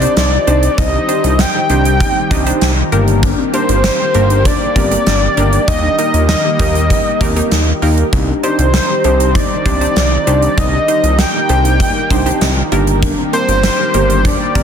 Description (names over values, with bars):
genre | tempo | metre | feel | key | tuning
synth-pop | 98 BPM | 4/4 | straight | C minor | A4 = 440 Hz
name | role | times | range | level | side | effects
fat analog lead | melody | 0.0-14.6 s | C5 to G5 | -16 LUFS | left 1 dB | ping-pong delay
funky polysynth comp | accompaniment | 0.0-14.6 s | Bb3 to Eb5 | -20 LUFS | right 2 dB | chorus
lush unison pad | sustained chords | 0.0-14.6 s | Eb3 to G4 | -20 LUFS | equal | chorus, phaser
warbly dusty pluck | arpeggios | 0.0-14.6 s | C4 to G4 | -24 LUFS | left 6 dB | chorus, ping-pong delay
fat analog bass | bass | 0.0-14.6 s | G1 to Eb2 | -15 LUFS | equal | none
gated 80s drum kit | drums | 0.0-14.6 s | hi-hat, kick drum, snare drum | -17 LUFS | equal | none
room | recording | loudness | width
light reverb, studio reverb | dense, heavily limited modern master | -11 LUFS | side -8 dB against mid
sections
0.0-14.6 A section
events
none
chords
0.0 Cmadd9; 2.9 Gm; 5.7 Eb; 8.1 Cmadd9; 12.7 Gm